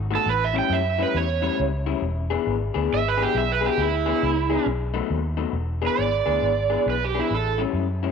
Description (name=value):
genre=electric blues shuffle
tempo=136 BPM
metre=4/4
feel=swing 64% on 8ths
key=E mixolydian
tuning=A4 = 437 Hz
part: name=vintage muted fingered electric bass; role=bass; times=0.0-8.1 s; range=E1 to F#2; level=-26 LUFS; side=equal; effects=none
part: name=electric guitar through a small old amp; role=riff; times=0.1-8.1 s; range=A2 to G#4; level=-26 LUFS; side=left 14 dB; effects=none
part: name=overdriven slide guitar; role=melody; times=0.2-7.6 s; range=E4 to G5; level=-24 LUFS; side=right 10 dB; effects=none
room=moderate spring reverb, RT60 2.0 s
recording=1960s-style stereo with parts hard left and right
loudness=-21 LUFS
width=side -6 dB against mid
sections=0.0-5.6 A section; 5.6-8.1 B section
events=electric slide guitar solo 0.0-5.6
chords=0.3 A7; 2.0 E7; 4.7 B7; 5.6 E7; 7.3 A7